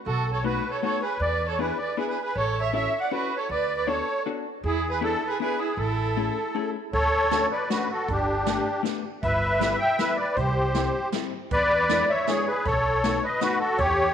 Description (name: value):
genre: musette waltz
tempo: 157 BPM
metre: 3/4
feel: straight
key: A major, D major from 6.9 s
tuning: A4 = 440 Hz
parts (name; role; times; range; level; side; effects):
- musette accordion; melody; 0.1-14.1 s; D4 to G5; -24 LUFS; equal; none
- warm violin; second line; 0.1-6.7 s; E4 to D5; -31 LUFS; right 10 dB; none
- upright bass; bass; 0.1-14.1 s; G1 to E2; -30 LUFS; right 1 dB; none
- vintage hollow-body jazz guitar; accompaniment; 0.4-13.6 s; G3 to A4; -32 LUFS; left 11 dB; none
- jazz brush drum kit; drums; 6.9-13.9 s; hi-hat, kick drum, snare drum; -33 LUFS; right 6 dB; none
room: moderate plate reverb, RT60 1.9 s, small room ambience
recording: 1960s-style stereo with parts hard left and right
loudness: -23 LUFS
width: side -8 dB against mid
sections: 0.0-6.9 A section; 6.9-14.1 B section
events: none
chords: 0.1 B7; 1.2 E7; 2.4 A6; 3.5 D6; 4.6 E7; 5.8 Amaj7; 6.9 Dmaj7; 8.1 Gadd9; 9.2 Em/G; 10.4 C; 11.5 E7; 12.7 B7